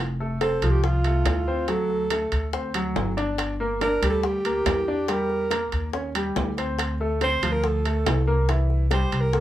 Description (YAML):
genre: Afro-Cuban jazz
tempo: 141 BPM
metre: 4/4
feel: straight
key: F major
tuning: A4 = 440 Hz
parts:
  - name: upright bass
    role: bass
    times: 0.0-9.4 s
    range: F1 to E2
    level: -25 LUFS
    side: equal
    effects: none
  - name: warm concert grand piano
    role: accompaniment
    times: 0.2-9.4 s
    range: E3 to D5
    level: -28 LUFS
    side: left 1 dB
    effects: none
  - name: breathy alto saxophone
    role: melody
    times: 0.4-9.4 s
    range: F4 to C5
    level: -26 LUFS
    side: right 2 dB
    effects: none
  - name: bongos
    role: percussion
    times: 0.4-9.4 s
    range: none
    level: -32 LUFS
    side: left 5 dB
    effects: none
  - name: timbales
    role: percussion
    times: 0.4-9.3 s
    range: none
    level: -30 LUFS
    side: right 3 dB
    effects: none
room: moderate small room reverb, RT60 0.5 s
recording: heard from further back in the room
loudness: -21 LUFS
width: side -13 dB against mid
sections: 0.0-9.4 A section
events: none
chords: 0.0 F; 1.7 D7; 3.4 Gm; 5.1 Edim; 5.9 Eb6; 6.8 Dm7; 8.5 C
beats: 0.41 0.83 1.26 | 1.69 2.11 2.54 2.96 | 3.39 3.81 4.24 4.66 | 5.09 5.51 5.94 6.36 | 6.79 7.21 7.64 8.06 | 8.49 8.91 9.34